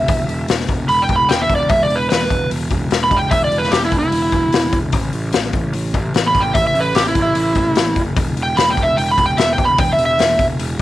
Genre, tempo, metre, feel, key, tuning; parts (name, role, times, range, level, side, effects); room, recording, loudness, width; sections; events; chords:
blues rock power trio and southern rock; 148 BPM; 4/4; straight; A4 = 441 Hz
overdriven slide guitar; melody; 0.0-10.4 s; E4 to B5; -16 LUFS; right 1 dB
fuzz picked electric bass; bass; 0.0-10.8 s; E1 to A1; -22 LUFS; right 1 dB; overdrive
raw garage drum kit; drums; 0.1-10.8 s; hi-hat, kick drum, snare drum; -18 LUFS; left 3 dB
studio reverb; 1960s-style stereo; -14 LUFS; side -15 dB against mid
0.0-10.8 A section
electric slide guitar solo 0.0-10.8
0.0 E5; 4.9 A5; 8.2 Em